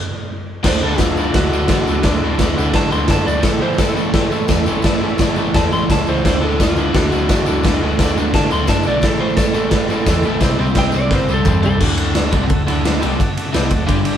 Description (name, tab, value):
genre	garage rock duo or trio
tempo	172 BPM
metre	4/4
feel	straight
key	D major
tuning	A4 = 440 Hz
part	overdriven electric guitar	riff	0.6-14.2 s	D2 to C4	-20 LUFS	equal	none
part	hollow-body short-scale picked electric bass	bass	0.6-14.2 s	D1 to E2	-23 LUFS	equal	overdrive
part	raw garage drum kit	drums	0.6-14.1 s	crash cymbal, kick drum, ride cymbal, snare drum, toms	-17 LUFS	equal	none
part	tambourine	percussion	0.6-11.8 s	none	-36 LUFS	left 4 dB	none
part	electric slide guitar	melody	0.7-11.8 s	F4 to C6	-22 LUFS	equal	none
part	combo organ	sustained chords	0.7-14.2 s	D4 to E5	-30 LUFS	left 1 dB	none
room	light reverb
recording	band playing live in one room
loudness	-14 LUFS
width	side -9 dB against mid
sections	0.6-11.8 A section; 11.8-14.2 B section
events	stop 0.0-0.6; drum fill 11.1-11.8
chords	0.0 N.C.; 0.6 D; 3.4 A; 6.2 D; 9.0 A; 10.4 C; 11.8 D